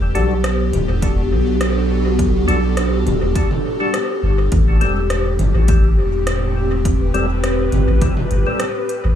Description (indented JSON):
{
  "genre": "ambient dub",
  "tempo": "103 BPM",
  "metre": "4/4",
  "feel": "swing 54% on 16ths",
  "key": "E minor",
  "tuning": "A4 = 440 Hz",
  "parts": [
    { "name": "airy breathy pad", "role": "sustained chords", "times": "0.0-9.2 s", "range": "A2 to B4", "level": "-21 LUFS", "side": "left 2 dB", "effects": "chorus" },
    { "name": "soft dub sub bass", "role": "bass", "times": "0.0-9.2 s", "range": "D1 to B1", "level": "-17 LUFS", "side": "equal", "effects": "none" },
    { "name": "percussive tonewheel organ", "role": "stabs", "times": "0.1-8.6 s", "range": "G3 to A4", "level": "-26 LUFS", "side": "left 3 dB", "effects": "chorus vibrato, slow rotary speaker, dub echo" },
    { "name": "organic electronic drum kit", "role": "drums", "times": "0.2-9.0 s", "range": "hi-hat, rim click, toms", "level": "-25 LUFS", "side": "equal", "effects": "dub echo" },
    { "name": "electronic kick drum", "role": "drums", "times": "1.0-8.1 s", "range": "none", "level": "-20 LUFS", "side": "equal", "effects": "overdrive" }
  ],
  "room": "light reverb",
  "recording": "echo-heavy mix, small room ambience",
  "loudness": "-15 LUFS",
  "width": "side -10 dB against mid",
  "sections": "0.0-9.2 A section",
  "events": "none",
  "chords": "0.0 Em11; 4.5 Am7"
}